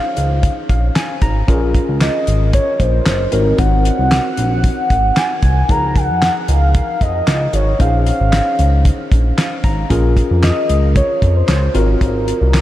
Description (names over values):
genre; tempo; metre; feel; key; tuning
early-eighties boogie funk; 114 BPM; 4/4; straight; unclear; A4 = 441 Hz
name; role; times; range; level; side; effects
warm velvety synth lead; melody; 0.0-12.6 s; Bb4 to Bb5; -19 LUFS; equal; chorus, diffuse ambient delay
tine electric piano; accompaniment; 0.0-12.6 s; F3 to Bb5; -22 LUFS; left 2 dB; medium stereo tremolo
chorused synth bass; bass; 0.2-12.6 s; Gb1 to F2; -15 LUFS; equal; none
damped 70s drum kit; drums; 0.2-12.6 s; handclaps, hi-hat, kick drum, snare drum; -18 LUFS; equal; none
room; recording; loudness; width
moderate huge ambient reverb, RT60 8.2 s; dreamy mix soaked in reverb; -12 LUFS; side -14 dB against mid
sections
0.0-12.6 A section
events
tine electric piano fill 0.4-1.5, 9.1-9.9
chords
0.0 Bbm11; 1.5 Gbmaj7 (rootless); 3.3 Ab9; 5.7 Db69; 7.8 Bbm11; 11.7 Ab13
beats
0.43 0.96 | 1.48 2.01 2.54 3.06 | 3.59 4.11 4.64 5.17 | 5.69 6.22 6.75 7.27 | 7.80 8.32 8.85 9.38 | 9.90 10.43 10.96 11.48 | 12.01 12.54